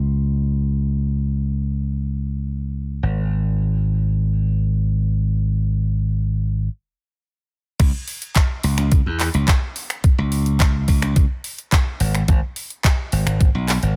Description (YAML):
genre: nu-disco, nu disco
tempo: 107 BPM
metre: 4/4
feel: straight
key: C# minor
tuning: A4 = 439 Hz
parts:
  - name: glassy slap bass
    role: bass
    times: 0.0-13.9 s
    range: G#1 to E2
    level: -22 LUFS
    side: equal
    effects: none
  - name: electronic kick drum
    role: drums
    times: 7.8-13.5 s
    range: none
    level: -18 LUFS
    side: equal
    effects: studio reverb
  - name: pop drum kit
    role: drums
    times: 7.8-13.9 s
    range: crash cymbal, finger snaps, handclaps, hi-hat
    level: -27 LUFS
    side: equal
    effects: studio reverb
room: little or no reverb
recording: low-pass filter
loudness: -20 LUFS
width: mono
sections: 0.0-7.8 A section; 7.8-14.0 B section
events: filter sweep 0.0-7.8; stop 6.7-7.8; drop 7.8-14.0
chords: none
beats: 0.51 | 1.07 1.63 2.19 2.75 | 3.31 3.87 4.43 4.99 | 5.55 6.12 6.67 7.24 | 7.80 8.36 8.92 9.48 | 10.04 10.60 11.16 11.72 | 12.28 12.84 13.40